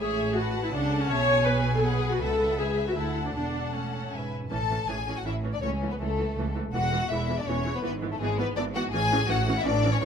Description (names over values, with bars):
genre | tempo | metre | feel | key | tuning
quick classical-period movement for string orchestra | 163 BPM | 3/4 | rubato | A major | A4 = 440 Hz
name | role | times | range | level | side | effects
rich studio violin section | melody | 0.0-10.0 s | G#4 to A5 | -32 LUFS | left 5 dB | none
rich studio violin section | second line | 0.0-10.1 s | G#3 to G#5 | -33 LUFS | left 3 dB | none
rich studio viola section | accompaniment | 0.0-10.1 s | E3 to C#5 | -29 LUFS | equal | none
rich studio cello section | bass | 0.0-10.1 s | C#2 to C#3 | -32 LUFS | right 2 dB | none
rich studio double bass section | bass | 0.0-10.1 s | E1 to D2 | -32 LUFS | right 2 dB | none
room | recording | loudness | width
moderate scoring stage reverb, RT60 2.0 s | close, detailed microphones | -24 LUFS | side -7 dB against mid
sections
0.0-4.5 A section; 4.5-10.1 A section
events
none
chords
0.0 A; 1.1 E/B (rootless); 2.2 A/C#; 3.0 Dadd9; 3.3 A/E; 4.1 E; 4.5 A; 5.6 A/C#; 6.7 E; 7.8 E/G#; 8.9 A